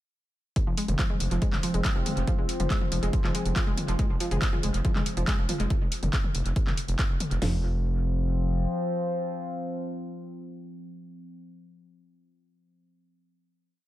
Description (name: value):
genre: driving peak-time techno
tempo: 140 BPM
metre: 4/4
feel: straight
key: F minor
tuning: A4 = 440 Hz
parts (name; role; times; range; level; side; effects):
- analog drone; drone; 0.8-10.9 s; F3 to C4; -34 LUFS; left 1 dB; chorus, sidechain pumping
- techno drum kit; drums; 0.6-7.5 s; hi-hat, kick drum, snare drum, toms; -27 LUFS; equal; none
- techno drum kit; drums; 0.6-7.4 s; handclaps, hi-hat, toms; -32 LUFS; left 1 dB; analog delay
- analog pluck; riff; 0.7-7.6 s; F3 to Ab3; -33 LUFS; equal; chorus, tube saturation, sidechain pumping, tape echo
- gritty driven synth bass; bass; 0.7-8.7 s; F1; -28 LUFS; equal; tube saturation, sidechain pumping
room: light reverb, digital ambience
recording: echo-heavy mix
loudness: -25 LUFS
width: side -14 dB against mid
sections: 0.6-7.4 drop; 7.4-10.8 final chord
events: drop 0.6-7.4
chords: 0.6 F5